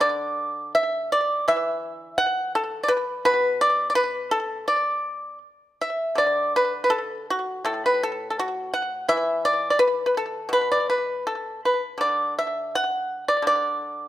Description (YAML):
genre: chinese traditional, Chinese solo plucked strings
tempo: 83 BPM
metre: 2/4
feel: rubato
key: D gong mode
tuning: A4 = 440 Hz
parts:
  - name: pipa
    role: solo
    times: 0.0-14.1 s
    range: A2 to F#5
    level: -21 LUFS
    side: equal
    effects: slapback echo
room: moderate recital hall reverb, RT60 1.5 s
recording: close, detailed microphones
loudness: -21 LUFS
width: side -13 dB against mid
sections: 0.0-6.2 A section; 6.2-14.1 B section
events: none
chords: none